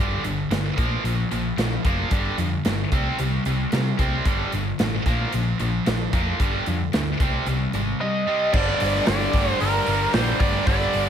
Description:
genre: hard rock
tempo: 112 BPM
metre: 4/4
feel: straight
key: G minor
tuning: A4 = 439 Hz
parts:
  - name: heavy high-gain guitar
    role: riff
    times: 0.0-11.1 s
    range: G2 to C4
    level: -27 LUFS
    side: right 13 dB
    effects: distortion
  - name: scooped high-gain guitar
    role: riff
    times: 0.0-11.1 s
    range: G2 to C4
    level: -28 LUFS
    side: left 11 dB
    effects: distortion
  - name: hollow-body short-scale picked electric bass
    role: bass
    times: 0.0-11.1 s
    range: F#1 to C3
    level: -26 LUFS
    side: equal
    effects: none
  - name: big rock drum kit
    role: drums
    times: 0.2-11.1 s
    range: crash cymbal, hi-hat, kick drum, snare drum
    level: -25 LUFS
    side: equal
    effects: none
  - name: biting lead guitar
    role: melody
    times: 8.0-11.1 s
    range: Bb4 to Eb5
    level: -24 LUFS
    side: right 1 dB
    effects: overdrive, plate reverb, digital delay
  - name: tight distorted guitar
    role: riff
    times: 8.5-11.1 s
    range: G2 to G3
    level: -28 LUFS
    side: left 1 dB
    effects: distortion
room: light reverb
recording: none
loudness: -20 LUFS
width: side -8 dB against mid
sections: 0.0-8.5 A section; 8.5-11.1 B section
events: none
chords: 0.0 G5; 0.8 Bb5; 2.1 G5; 2.9 C5; 4.3 G5; 5.1 Bb5; 6.4 G5; 7.2 Cm; 8.5 G5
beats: 0.51 1.04 1.58 | 2.11 2.65 3.19 3.72 | 4.26 4.79 5.33 5.86 | 6.40 6.93 7.47 8.00 | 8.54 9.07 9.61 10.14 | 10.67

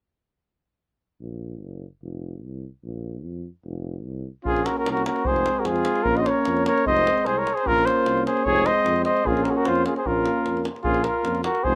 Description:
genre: balkan folk, Balkan brass band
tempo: 150 BPM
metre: 2/4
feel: straight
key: Bb minor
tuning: A4 = 440 Hz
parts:
  - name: mellow tuba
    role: bass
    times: 1.2-11.8 s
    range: F1 to F2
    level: -32 LUFS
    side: equal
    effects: none
  - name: mellow trumpet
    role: second line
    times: 4.4-11.8 s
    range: F4 to C5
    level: -29 LUFS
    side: equal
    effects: none
  - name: warm French horn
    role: accompaniment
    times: 4.4-11.8 s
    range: C4 to Db4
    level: -31 LUFS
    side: equal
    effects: none
  - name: mellow cornet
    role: melody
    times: 4.5-11.8 s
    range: Ab4 to Eb5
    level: -26 LUFS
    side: equal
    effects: none
  - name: mellow euphonium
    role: accompaniment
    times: 4.5-11.8 s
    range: Ab3 to Bb3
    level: -33 LUFS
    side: equal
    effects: none
  - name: davul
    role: percussion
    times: 4.5-11.7 s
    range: none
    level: -36 LUFS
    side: equal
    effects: none
room: light reverb, small room ambience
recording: rough home demo mix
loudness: -22 LUFS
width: mono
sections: 1.2-4.4 A section; 4.4-10.8 B section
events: none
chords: 1.2 Gb; 2.0 F5; 2.8 Bb5; 3.6 F5; 4.4 Bbm; 5.3 Fm; 6.1 Bbm; 6.9 Fm; 7.7 Bbm; 8.5 Fm; 9.3 Bbm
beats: | 1.20 1.61 | 2.02 2.42 | 2.83 3.23 | 3.64 4.04 | 4.45 4.85 | 5.25 5.66 | 6.06 6.46 | 6.86 7.26 | 7.66 8.06 | 8.46 8.86 | 9.26 9.65 | 10.05 10.45 | 10.85 11.24 | 11.64

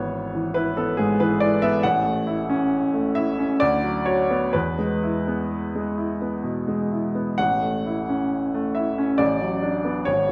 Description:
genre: classical, romantic character piece for solo piano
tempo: 62-71 BPM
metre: 3/4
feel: rubato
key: A major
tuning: A4 = 441 Hz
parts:
  - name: clear upright piano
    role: solo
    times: 0.0-10.3 s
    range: G#1 to F#5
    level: -23 LUFS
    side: equal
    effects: none
room: wet recital hall reverb, RT60 1.7 s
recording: none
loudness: -23 LUFS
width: mono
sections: 0.0-10.3 A section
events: none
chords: 0.0 E/G#; 1.8 A; 3.6 Bm/D; 4.5 E; 7.4 A; 9.2 Bm7/A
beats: 0.11 0.97 | 1.82 2.70 3.60 | 4.54 5.50 6.43 | 7.39 8.32 9.20 | 10.08

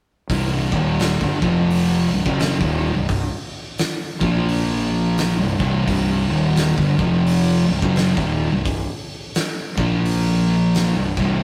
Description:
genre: stoner and doom metal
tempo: 86 BPM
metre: 4/4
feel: swing 61% on 8ths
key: C minor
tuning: A4 = 438 Hz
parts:
  - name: thick fuzz guitar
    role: riff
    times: 0.3-11.4 s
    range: C2 to Bb3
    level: -22 LUFS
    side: equal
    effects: distortion
  - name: thick fuzz guitar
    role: riff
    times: 0.3-11.4 s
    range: C2 to Bb3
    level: -27 LUFS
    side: equal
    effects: none
  - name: fuzz fingered electric bass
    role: bass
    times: 0.3-11.4 s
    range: C1 to Bb1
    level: -26 LUFS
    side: equal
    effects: overdrive, tube saturation
  - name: oversized low-tuned drum kit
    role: drums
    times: 0.3-11.3 s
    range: hi-hat, kick drum, snare drum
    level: -27 LUFS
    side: equal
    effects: none
room: light reverb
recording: rough rehearsal-room recording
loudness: -20 LUFS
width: mono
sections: 0.3-11.4 A section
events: none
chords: 0.3 Cm; 1.3 F5; 2.0 Cm; 4.1 Bb5; 5.4 Cm; 6.9 F5; 7.6 Cm; 9.7 Bb5; 10.9 C5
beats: | 0.29 0.99 1.69 2.39 | 3.08 3.78 4.48 5.18 | 5.87 6.57 7.27 7.96 | 8.66 9.36 10.05 10.75

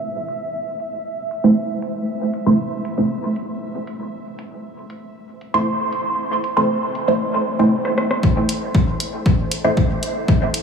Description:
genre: dub techno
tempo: 117 BPM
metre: 4/4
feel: straight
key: A minor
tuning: A4 = 440 Hz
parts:
  - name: bubbling stepped-filter texture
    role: texture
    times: 0.0-10.6 s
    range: A4 to E5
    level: -32 LUFS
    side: right 2 dB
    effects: chorus, built-in reverb, sidechain pumping
  - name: deep house drum kit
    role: drums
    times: 0.3-10.6 s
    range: hi-hat, rim click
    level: -26 LUFS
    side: equal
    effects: overdrive, low-pass filter on hats, low-pass filter on snare, dub echo
  - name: filtered dub chord stab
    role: stabs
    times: 1.4-10.6 s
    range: A3 to C5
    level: -19 LUFS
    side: right 1 dB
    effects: phaser, sidechain pumping, dub echo
  - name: electronic kick drum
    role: drums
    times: 8.2-10.4 s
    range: none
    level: -17 LUFS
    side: left 1 dB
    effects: none
room: wet huge ambient reverb, RT60 7.5 s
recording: dreamy mix soaked in reverb, low-pass filter, studio ambience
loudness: -18 LUFS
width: side -6 dB against mid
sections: 0.0-8.2 A section; 8.2-10.6 B section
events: filter sweep on synth stab 0.0-8.2; filter sweep 0.0-8.2; drum fill 7.8-8.2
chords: 0.0 Am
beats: | 0.03 0.54 1.05 1.57 | 2.08 2.59 3.10 3.62 | 4.13 4.64 5.16 5.67 | 6.18 6.69 7.21 7.72 | 8.23 8.74 9.26 9.77 | 10.28

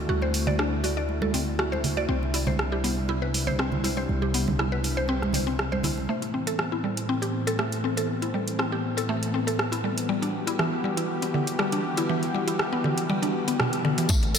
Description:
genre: afro house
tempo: 120 BPM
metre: 4/4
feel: straight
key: A dorian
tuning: A4 = 440 Hz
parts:
  - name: warm analog pad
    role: sustained chords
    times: 0.0-14.4 s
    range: A2 to G4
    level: -30 LUFS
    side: left 1 dB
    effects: chorus, sidechain pumping
  - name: warm 808-style bass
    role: bass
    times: 0.0-6.1, 14.1-14.4 s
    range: A1 to D2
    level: -30 LUFS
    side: equal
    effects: sidechain pumping
  - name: mallet-like synth pluck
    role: arpeggios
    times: 0.1-14.4 s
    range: B2 to D5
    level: -28 LUFS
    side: left 1 dB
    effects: chorus, sidechain pumping, ping-pong delay
  - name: congas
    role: percussion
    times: 0.1-6.1 s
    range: none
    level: -32 LUFS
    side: right 3 dB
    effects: none
  - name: afro-pop drum kit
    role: drums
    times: 0.3-14.4 s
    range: hi-hat, rim click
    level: -31 LUFS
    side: right 1 dB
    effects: small room ambience
  - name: electronic kick drum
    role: drums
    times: 14.1-14.2 s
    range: none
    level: -23 LUFS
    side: equal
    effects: small room ambience
  - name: tambourine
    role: percussion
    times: 14.1-14.4 s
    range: none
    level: -26 LUFS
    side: left 4 dB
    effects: none
room: wet cathedral reverb, RT60 4.9 s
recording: dreamy mix soaked in reverb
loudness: -24 LUFS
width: side -7 dB against mid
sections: 0.0-6.1 A section; 6.1-14.1 B section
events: build-up 6.1-14.1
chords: 0.0 D; 2.1 C; 6.1 Amadd9; 10.1 Em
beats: | 0.09 0.59 1.09 1.59 | 2.09 2.59 3.09 3.59 | 4.09 4.59 5.09 5.59 | 6.09 6.59 7.09 7.59 | 8.09 8.59 9.09 9.59 | 10.09 10.59 11.09 11.59 | 12.09 12.59 13.09 13.59 | 14.09

